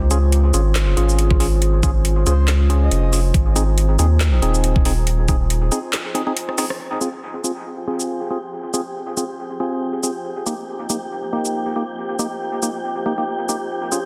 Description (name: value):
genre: deep dubstep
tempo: 139 BPM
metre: 4/4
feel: swing 56% on 16ths, half-time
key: F minor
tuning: A4 = 441 Hz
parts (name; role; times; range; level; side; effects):
- dark analog pad; sustained chords; 0.0-14.1 s; F4 to C5; -32 LUFS; equal; chorus
- saturated sub bass; bass; 0.0-5.7 s; Eb1 to Eb2; -18 LUFS; equal; none
- percussive organ stab; stabs; 0.1-14.0 s; Bb3 to Ab4; -27 LUFS; equal; chorus, dub echo
- garage drum kit; drums; 0.1-14.0 s; handclaps, hi-hat, rim click, shaker, snare drum; -27 LUFS; equal; overdrive
- electronic kick drum; drums; 1.3-5.4 s; none; -20 LUFS; equal; overdrive
- breathy flute-like synth lead; melody; 2.3-3.1 s; C5 to Eb5; -36 LUFS; equal; chorus, dub echo
- wind-like tuned noise texture; texture; 7.6-14.1 s; G4 to G5; -32 LUFS; equal; built-in reverb
room: light reverb, digital ambience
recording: dense, heavily limited modern master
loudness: -20 LUFS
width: mono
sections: 0.0-6.8 A section; 6.8-14.1 B section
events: drop 0.0-6.8; drum fill 6.5-6.8; band accent 6.7; filter sweep on synth stab 6.8-14.1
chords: 0.0 Db; 3.3 Ab; 6.8 Fm; 10.2 Eb